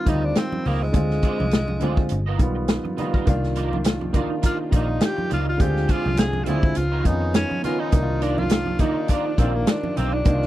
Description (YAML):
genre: lush 1970s-style soul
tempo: 103 BPM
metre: 4/4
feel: swing 54% on 16ths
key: C minor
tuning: A4 = 440 Hz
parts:
  - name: breathy tenor saxophone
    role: melody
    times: 0.0-10.5 s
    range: Ab3 to Ab4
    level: -27 LUFS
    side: left 1 dB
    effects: none
  - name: warm concert grand piano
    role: accompaniment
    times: 0.0-10.5 s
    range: D3 to F4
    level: -27 LUFS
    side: equal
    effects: none
  - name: electric guitar through a small old amp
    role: riff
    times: 0.1-10.2 s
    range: B3 to F5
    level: -31 LUFS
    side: right 8 dB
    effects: ensemble chorus
  - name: vintage muted fingered electric bass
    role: bass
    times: 0.1-10.5 s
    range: G1 to F2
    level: -25 LUFS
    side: equal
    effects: none
  - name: warm soul drum kit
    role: drums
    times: 0.1-10.5 s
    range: hi-hat, kick drum, snare drum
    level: -20 LUFS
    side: equal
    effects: none
  - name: congas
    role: percussion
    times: 0.1-10.4 s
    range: none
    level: -32 LUFS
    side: right 2 dB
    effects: none
  - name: muted French horn section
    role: sustained chords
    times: 3.3-10.5 s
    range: C3 to F4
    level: -36 LUFS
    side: left 3 dB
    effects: none
  - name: group handclap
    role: percussion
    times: 3.9-9.8 s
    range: none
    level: -38 LUFS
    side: left 9 dB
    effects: none
room: light reverb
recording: none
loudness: -19 LUFS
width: side -14 dB against mid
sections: 0.0-10.5 A section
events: tenor saxophone solo 0.0-10.5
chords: 0.0 Eb69; 0.9 Dm7b5; 2.1 G7alt; 3.3 Cm11; 5.6 Dm7b5; 6.8 Db9; 7.9 Cm11